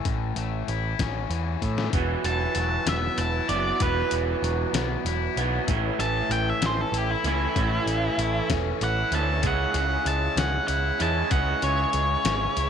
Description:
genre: indie rock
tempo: 64 BPM (dotted quarters)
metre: 6/8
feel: straight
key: A major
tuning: A4 = 439 Hz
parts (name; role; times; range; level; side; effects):
- overdriven electric guitar; riff; 0.0-12.7 s; A2 to E4; -31 LUFS; left 14 dB; none
- growling picked electric bass; bass; 0.1-12.7 s; E1 to A2; -28 LUFS; right 1 dB; overdrive
- dusty soul sampler-style drum kit; drums; 0.1-12.7 s; hi-hat, kick drum, snare drum; -30 LUFS; left 3 dB; none
- tonewheel organ; sustained chords; 1.9-12.7 s; G#3 to F#5; -38 LUFS; equal; none
- electric guitar through a small old amp; riff; 1.9-12.7 s; A2 to E4; -30 LUFS; right 14 dB; lush chorus, tape echo
- octave-fuzz lead guitar; melody; 2.3-12.7 s; E4 to A5; -27 LUFS; equal; distortion, tape echo
room: light reverb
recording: 1960s-style stereo with parts hard left and right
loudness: -22 LUFS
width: side -8 dB against mid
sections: 0.0-1.9 A section; 1.9-12.7 B section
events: drum fill 1.6-1.9; lead electric guitar solo 1.9-12.7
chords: 0.0 A; 1.9 Esus2; 5.7 A; 9.4 C#m

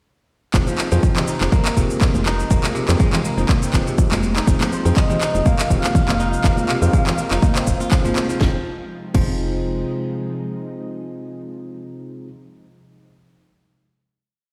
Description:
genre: afro house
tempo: 122 BPM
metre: 4/4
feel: swing 55% on 16ths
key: F minor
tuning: A4 = 439 Hz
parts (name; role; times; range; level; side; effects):
- ethereal airy pad; sustained chords; 1.3-11.5 s; C3 to F4; -33 LUFS; equal; ensemble chorus, built-in reverb, sidechain pumping
- bell-like tine electric piano; stabs; 0.5-12.3 s; C4 to C5; -30 LUFS; equal; sidechain pumping, dub echo
- woody FM bass; bass; 0.5-9.8 s; F1 to F2; -24 LUFS; equal; sidechain pumping
- electronic kick drum; drums; 0.5-9.3 s; none; -20 LUFS; equal; overdrive
- house drum kit; drums; 0.5-9.3 s; crash cymbal, handclaps, shaker, snare drum; -27 LUFS; equal; overdrive
- kora; arpeggios; 0.7-11.4 s; C3 to F4; -29 LUFS; equal; sidechain pumping, dub echo
- congas; percussion; 0.7-8.3 s; none; -29 LUFS; equal; none
- expressive synth lead; melody; 4.7-7.9 s; C5 to F5; -28 LUFS; equal; lush chorus, cassette tape, dub echo
room: light reverb, digital ambience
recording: played on a big sound system in a bare room, stone room reverb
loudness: -19 LUFS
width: mono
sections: 0.5-8.4 groove; 8.4-12.3 final chord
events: none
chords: 0.5 Fm7

